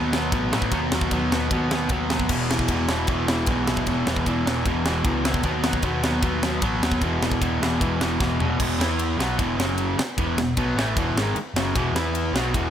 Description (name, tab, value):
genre	punk rock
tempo	152 BPM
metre	4/4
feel	straight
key	E major from 8.6 s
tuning	A4 = 438 Hz
part	distorted electric guitar	riff	0.0-12.7 s	E2 to E4	-23 LUFS	equal	distortion
part	overdriven picked electric bass	bass	0.0-12.7 s	E1 to A2	-28 LUFS	equal	none
part	tight metal drum kit	drums	0.1-12.6 s	crash cymbal, kick drum, ride cymbal, snare drum, toms	-26 LUFS	equal	none
room	light reverb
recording	none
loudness	-20 LUFS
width	side -10 dB against mid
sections	0.0-8.6 A section; 8.6-12.7 B section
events	drum fill 8.2-8.6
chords	0.0 B; 2.3 E5; 5.4 B/D#; 7.0 E5; 9.6 F#5; 10.0 E